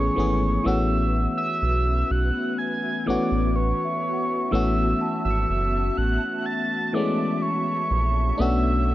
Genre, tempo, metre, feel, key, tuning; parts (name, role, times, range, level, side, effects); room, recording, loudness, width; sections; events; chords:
contemporary R&B; 62 BPM; 4/4; straight; A major; A4 = 441 Hz
soft octave-layered synth lead; melody; 0.0-8.9 s; C#6 to A6; -27 LUFS; right 1 dB; chorus
FM electric piano; accompaniment; 0.0-8.9 s; E3 to G#4; -25 LUFS; left 2 dB; chorus
round analog bass; bass; 0.0-8.9 s; F#1 to B1; -24 LUFS; equal
hollow soft pad; sustained chords; 0.7-8.9 s; B3 to A5; -32 LUFS; right 1 dB; ensemble chorus
celesta; texture; 0.7-8.9 s; G#4 to C#7; -38 LUFS; right 2 dB; ping-pong delay
digital ambience; worn, warbling old tape, cassette tape, warbly pitch drift; -21 LUFS; side -15 dB against mid
0.7-8.9 A section
0.0 Amaj9; 0.7 A69; 8.4 Bm9